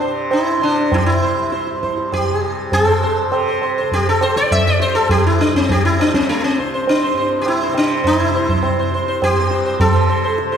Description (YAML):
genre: indian classical, Hindustani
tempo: 101 BPM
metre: 3/4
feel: straight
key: C raga bhupali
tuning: A4 = 440 Hz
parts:
  - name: sitar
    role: melody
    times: 0.0-10.6 s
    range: A3 to E5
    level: -16 LUFS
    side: equal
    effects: none
  - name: tanpura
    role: drone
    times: 0.0-10.6 s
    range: C2 to C3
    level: -26 LUFS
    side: left 1 dB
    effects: none
  - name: tabla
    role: percussion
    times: 0.0-10.6 s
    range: none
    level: -19 LUFS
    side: right 1 dB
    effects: none
room: wet scoring stage reverb, RT60 1.6 s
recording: heard from further back in the room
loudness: -14 LUFS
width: side -8 dB against mid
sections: 0.0-2.7 A section; 2.7-10.6 B section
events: speeding up 0.0-10.6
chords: none